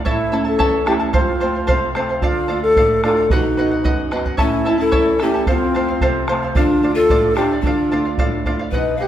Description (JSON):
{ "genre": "andean folk, Andean ensemble", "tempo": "111 BPM", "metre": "2/4", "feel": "straight", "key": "D dorian", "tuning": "A4 = 442 Hz", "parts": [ { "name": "charango", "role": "accompaniment", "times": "0.0-9.1 s", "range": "E4 to A5", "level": "-23 LUFS", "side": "equal", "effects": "none" }, { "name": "nylon-string guitar", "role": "accompaniment", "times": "0.0-9.1 s", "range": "E2 to F#4", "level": "-23 LUFS", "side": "right 2 dB", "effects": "none" }, { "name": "mellow alto flute", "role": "melody", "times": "0.1-9.1 s", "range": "D#4 to A4", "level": "-19 LUFS", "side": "equal", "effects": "none" }, { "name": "bombo", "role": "percussion", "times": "0.1-8.8 s", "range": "none", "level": "-22 LUFS", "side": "right 1 dB", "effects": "none" }, { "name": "breathy large pan pipes", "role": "second line", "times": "3.3-9.0 s", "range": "C4 to F5", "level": "-21 LUFS", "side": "left 3 dB", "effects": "none" } ], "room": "moderate concert hall reverb, RT60 2.1 s", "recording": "none", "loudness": "-15 LUFS", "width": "side -11 dB against mid", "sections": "0.1-8.7 A section", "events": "none", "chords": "0.1 A; 1.1 F; 2.2 Dm; 3.3 B; 4.4 A; 5.5 F; 6.6 Dm", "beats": "| 0.06 0.60 | 1.14 1.68 | 2.22 2.77 | 3.31 3.85 | 4.39 4.93 | 5.47 6.02 | 6.56 7.10 | 7.64 8.19 | 8.73" }